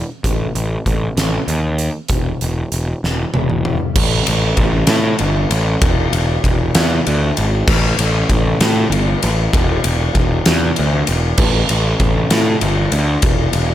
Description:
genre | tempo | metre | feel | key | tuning
quiet-loud alternative rock | 65 BPM (dotted quarters) | 6/8 | straight | unclear | A4 = 440 Hz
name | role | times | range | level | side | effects
fuzz picked electric bass | bass | 0.2-13.7 s | E1 to A2 | -16 LUFS | equal | overdrive
huge arena drum kit | drums | 0.2-13.7 s | crash cymbal, hi-hat, kick drum, ride cymbal, snare drum, toms | -17 LUFS | equal | none
room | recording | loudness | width
little or no reverb | none | -14 LUFS | side -12 dB against mid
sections
0.0-4.0 A section; 4.0-13.7 B section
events
drum fill 3.0-4.0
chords
none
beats
| 0.25 1.18 | 2.10 3.03 | 3.96 4.89 | 5.82 6.75 | 7.67 8.60 | 9.52 10.45 | 11.37 12.30 | 13.22

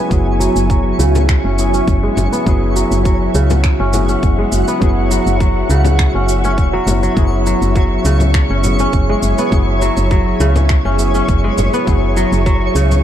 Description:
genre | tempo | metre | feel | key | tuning
organic downtempo | 102 BPM | 4/4 | straight | unclear | A4 = 439 Hz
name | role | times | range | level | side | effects
tine electric piano | accompaniment | 0.0-13.0 s | F#3 to G#4 | -21 LUFS | left 3 dB | medium stereo tremolo, sidechain pumping, ping-pong delay, shimmer reverb
ethereal airy pad | sustained chords | 0.0-13.0 s | F#4 to C#6 | -21 LUFS | right 2 dB | ensemble chorus, built-in reverb, sidechain pumping, shimmer reverb
kora | arpeggios | 0.0-13.0 s | C#3 to C#4 | -20 LUFS | equal | low-pass filter, ping-pong delay, shimmer reverb
twinkling granular texture | texture | 0.0-13.0 s | C#5 | -27 LUFS | equal | built-in reverb, shimmer reverb
woody FM bass | bass | 0.1-13.0 s | E1 to C#2 | -15 LUFS | equal | none
electronic cabasa and finger snaps | drums | 0.1-13.0 s | none | -25 LUFS | right 1 dB | none
electronic kick drum | drums | 0.1-12.6 s | none | -15 LUFS | equal | none
frame drum | percussion | 1.2-13.0 s | none | -23 LUFS | left 3 dB | none
room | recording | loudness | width
light reverb | dark, warm production | -12 LUFS | side -10 dB against mid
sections
0.0-13.0 A section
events
filter sweep on kora 0.0-13.0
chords
0.0 F#sus2; 7.2 C#m/F#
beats
| 0.11 0.70 1.29 1.88 | 2.46 3.05 3.64 4.23 | 4.82 5.41 5.99 6.58 | 7.17 7.76 8.35 8.94 | 9.52 10.11 10.70 11.29 | 11.88 12.46

